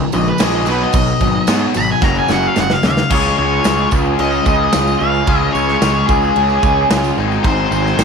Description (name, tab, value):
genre	classic rock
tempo	111 BPM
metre	4/4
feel	straight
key	unclear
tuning	A4 = 441 Hz
part	string machine, full ensemble	sustained chords	0.0-8.0 s	Ab3 to D#5	-29 LUFS	right 1 dB	none
part	distorted electric guitar	riff	0.0-8.0 s	Gb2 to Ab4	-19 LUFS	left 11 dB	overdrive
part	overdriven semi-hollow guitar	riff	0.0-8.0 s	Gb2 to Ab4	-21 LUFS	right 14 dB	none
part	fuzz picked electric bass	bass	0.0-8.0 s	Gb1 to Ab2	-20 LUFS	right 1 dB	overdrive
part	octave-fuzz lead guitar	melody	0.1-8.0 s	Ab4 to B5	-18 LUFS	left 1 dB	distortion
part	big rock drum kit	drums	0.1-8.0 s	crash cymbal, kick drum, snare drum	-19 LUFS	right 1 dB	none
part	tambourine	percussion	0.1-8.0 s	none	-34 LUFS	right 17 dB	none
room	light reverb, small room ambience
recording	1960s-style stereo with parts hard left and right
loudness	-12 LUFS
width	side -6 dB against mid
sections	0.0-3.1 A section; 3.1-8.0 B section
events	lead electric guitar solo 0.0-3.1; drum fill 2.0-3.1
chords	0.0 Dbadd9; 0.7 B; 2.0 Gb; 3.1 Db; 7.2 Ab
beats	0.40 | 0.94 1.48 2.02 2.57 | 3.11 3.65 4.19 4.73 | 5.28 5.82 6.36 6.90 | 7.44 7.99